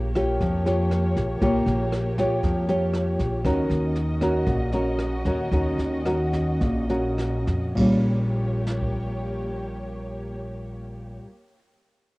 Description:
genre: bossa nova.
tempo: 100-119 BPM.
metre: 4/4.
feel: straight.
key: Bb minor.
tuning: A4 = 441 Hz.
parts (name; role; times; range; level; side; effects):
nylon-string guitar; accompaniment; 0.0-11.3 s; Bb2 to Db5; -24 LUFS; equal; cassette tape.
muted studio string section; sustained chords; 0.0-11.2 s; Bb3 to Eb5; -34 LUFS; equal; cassette tape.
upright bass; bass; 0.0-11.2 s; Bb1 to F2; -27 LUFS; equal; none.
jazz brush drum kit; drums; 0.2-9.0 s; crash cymbal, kick drum, rim click, snare drum; -33 LUFS; equal; cassette tape.
room: moderate spring reverb, RT60 2.0 s.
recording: home recording on cassette.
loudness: -22 LUFS.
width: side -22 dB against mid.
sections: 0.0-7.8 A section; 7.8-12.2 B section.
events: slowing down 3.5-7.8.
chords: 0.0 Bbm6; 3.5 Ebm7; 7.8 Bbm6.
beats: 0.41 0.92 | 1.42 1.93 2.44 2.94 | 3.45 3.96 4.47 4.99 | 5.52 6.06 6.61 7.18 | 7.77 8.37 8.97 9.57 | 10.16 10.76.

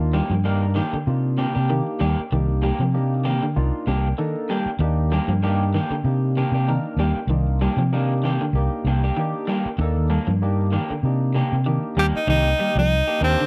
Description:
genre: afrobeat.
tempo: 96 BPM.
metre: 4/4.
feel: swing 56% on 16ths.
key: C minor.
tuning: A4 = 440 Hz.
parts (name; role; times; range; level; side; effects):
barky tine electric piano; accompaniment; 0.0-13.5 s; Bb3 to Bb4; -31 LUFS; equal; lush chorus.
fingered electric bass; bass; 0.0-13.3 s; C2 to C3; -23 LUFS; equal; none.
electric guitar at the edge of break-up; arpeggios; 0.1-13.5 s; C3 to G3; -29 LUFS; equal; analog chorus.
electric guitar through a small old amp; stabs; 0.1-13.4 s; Eb3 to G4; -30 LUFS; equal; spring reverb.
edgy tenor saxophone; melody; 12.0-13.5 s; C4 to G4; -23 LUFS; equal; none.
room: little or no reverb.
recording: dry, close 1970s-style studio recording.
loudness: -22 LUFS.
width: mono.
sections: 0.0-12.3 A section; 12.3-13.5 B section.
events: none.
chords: 0.0 Cm9.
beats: 0.44 1.06 1.69 | 2.31 2.94 3.56 4.18 | 4.81 5.43 6.05 6.68 | 7.30 7.92 8.55 9.17 | 9.79 10.42 11.04 11.66 | 12.28 12.90.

